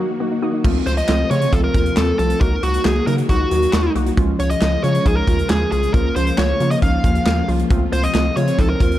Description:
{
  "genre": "synth-pop",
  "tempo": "136 BPM",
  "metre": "4/4",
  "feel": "straight",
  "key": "unclear",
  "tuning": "A4 = 440 Hz",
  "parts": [
    { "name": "warbly dusty pluck", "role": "accompaniment", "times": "0.0-8.9 s", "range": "F3 to Ab4", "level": "-22 LUFS", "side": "equal", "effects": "chorus" },
    { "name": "string machine, violas", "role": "sustained chords", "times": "0.0-9.0 s", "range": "C3 to Gb4", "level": "-27 LUFS", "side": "left 1 dB", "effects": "ensemble chorus" },
    { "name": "soft round pluck", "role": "arpeggios", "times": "0.0-0.6 s", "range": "Bb3 to Eb6", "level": "-28 LUFS", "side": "left 1 dB", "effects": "chorus, tape echo" },
    { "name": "round analog bass", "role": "bass", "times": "0.6-9.0 s", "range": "C2 to Db3", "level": "-20 LUFS", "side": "equal", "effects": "none" },
    { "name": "modern studio drum kit", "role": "drums", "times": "0.6-9.0 s", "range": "crash cymbal, handclaps, hi-hat, kick drum, snare drum", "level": "-21 LUFS", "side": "equal", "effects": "none" },
    { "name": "dark smooth lead guitar", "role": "melody", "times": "0.9-9.0 s", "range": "Gb4 to F5", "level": "-21 LUFS", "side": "equal", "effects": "overdrive" }
  ],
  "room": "moderate recital hall reverb, RT60 1.4 s, small room ambience",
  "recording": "dark, warm production",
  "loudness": "-15 LUFS",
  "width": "side -13 dB against mid",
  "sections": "0.6-9.0 A section",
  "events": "break 0.0-0.6",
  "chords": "0.0 Ebm; 0.6 F/Db; 2.4 Ebm/Db; 4.2 Db; 5.9 Bbm/Db; 7.7 F/Db"
}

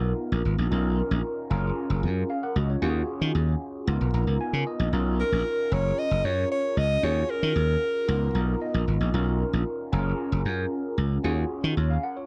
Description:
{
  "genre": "early-eighties boogie funk",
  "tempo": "114 BPM",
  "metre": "4/4",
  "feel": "straight",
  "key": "unclear",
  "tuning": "A4 = 440 Hz",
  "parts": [
    { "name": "overdriven tine electric piano", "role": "accompaniment", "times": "0.0-12.3 s", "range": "Cb4 to Bb5", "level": "-33 LUFS", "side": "equal", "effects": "phaser" },
    { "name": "slap bass", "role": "bass", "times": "0.0-12.0 s", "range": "Gb1 to Eb3", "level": "-27 LUFS", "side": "equal", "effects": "none" },
    { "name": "breathy alto saxophone", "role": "melody", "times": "5.2-8.9 s", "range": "Bb4 to Eb5", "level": "-29 LUFS", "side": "equal", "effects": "none" }
  ],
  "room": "light reverb, small room ambience",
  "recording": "dark, warm production",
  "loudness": "-26 LUFS",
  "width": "mono",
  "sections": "0.0-12.3 A section",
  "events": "tine electric piano fill 3.9-4.9, 8.1-9.1",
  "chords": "0.0 Db13 (rootless); 0.7 Bmaj9#11; 1.5 Gbmaj7; 2.8 Ebm11; 3.9 Db13; 5.7 Gbmaj7; 7.0 Ebm11; 8.1 Db13; 9.1 Bmaj9#11; 9.9 Gbmaj7; 11.2 Ebm11"
}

